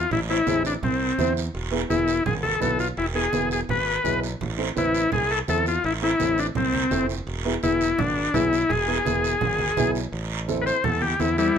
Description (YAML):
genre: latin, cumbia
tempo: 168 BPM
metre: 4/4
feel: straight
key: unclear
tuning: A4 = 439 Hz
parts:
  - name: combo organ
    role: melody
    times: 0.0-11.6 s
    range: G3 to C5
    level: -22 LUFS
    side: left 3 dB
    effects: none
  - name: modern bright fingered electric bass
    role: bass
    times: 0.0-11.5 s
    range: E1 to E2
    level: -29 LUFS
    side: right 1 dB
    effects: none
  - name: congas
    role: percussion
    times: 0.1-11.4 s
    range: none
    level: -31 LUFS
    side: right 4 dB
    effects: none
  - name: guiro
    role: percussion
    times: 0.1-11.6 s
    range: none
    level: -34 LUFS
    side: right 8 dB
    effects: none
  - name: dark upright piano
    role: accompaniment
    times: 0.3-11.6 s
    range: B3 to C5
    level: -28 LUFS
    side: right 2 dB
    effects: none
room: moderate studio reverb, RT60 0.7 s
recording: minimal, uncompressed stereo recording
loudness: -21 LUFS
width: side -8 dB against mid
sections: 0.0-10.1 A section; 10.1-11.6 B section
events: transistor combo organ solo 10.1-11.6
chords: 0.0 Am; 1.5 E; 4.4 Am; 7.3 E; 10.1 Am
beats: | 0.11 0.47 0.83 1.19 | 1.55 1.90 2.26 2.62 | 2.98 3.34 3.69 4.05 | 4.41 4.77 5.13 5.49 | 5.84 6.20 6.56 6.92 | 7.28 7.63 7.99 8.35 | 8.71 9.06 9.42 9.78 | 10.14 10.49 10.85 11.21 | 11.57